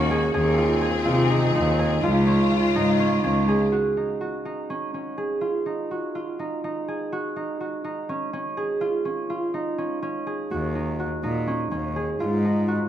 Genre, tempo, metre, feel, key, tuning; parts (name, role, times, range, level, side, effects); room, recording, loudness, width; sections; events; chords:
contemporary instrumental, chamber music in an uneven meter; 248 BPM (eighths); 7/8; straight; Eb dorian; A4 = 436 Hz
bright studio string section; sustained chords; 0.0-3.7 s; Db3 to Ab4; -27 LUFS; left 2 dB
concert harp; arpeggios; 0.0-12.9 s; Db4 to Ab4; -25 LUFS; right 2 dB
rich cello; bass; 0.0-3.6, 10.5-12.8 s; Db2 to C3; -23 LUFS; left 1 dB
light reverb; minimal, uncompressed stereo recording; -22 LUFS; side -10 dB against mid
0.0-3.7 A section; 3.7-12.9 B section
0.3 Fm7/Eb; 2.0 Db; 3.7 Ebm7; 5.4 Ab5; 7.1 Ebm7; 8.8 Dbadd9; 10.5 Ebm7; 12.2 Ab5